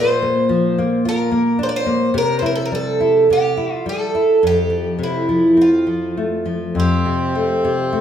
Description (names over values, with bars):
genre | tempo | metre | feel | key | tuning
fado-style ballad | 99-111 BPM | 4/4 | rubato | F major | A4 = 441 Hz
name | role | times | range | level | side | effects
picked twelve-string acoustic guitar | melody | 0.0-8.0 s | E4 to D5 | -17 LUFS | right 1 dB | none
nylon-string guitar | accompaniment | 0.0-8.0 s | F2 to F4 | -20 LUFS | left 2 dB | none
accordion | second line | 6.8-8.0 s | C4 | -20 LUFS | right 1 dB | none
room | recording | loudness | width
moderate recital hall reverb, RT60 1.3 s | minimal, uncompressed stereo recording | -15 LUFS | side -9 dB against mid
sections
0.0-6.8 A section; 6.8-8.0 A section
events
none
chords
0.0 Bb; 2.2 C; 4.4 F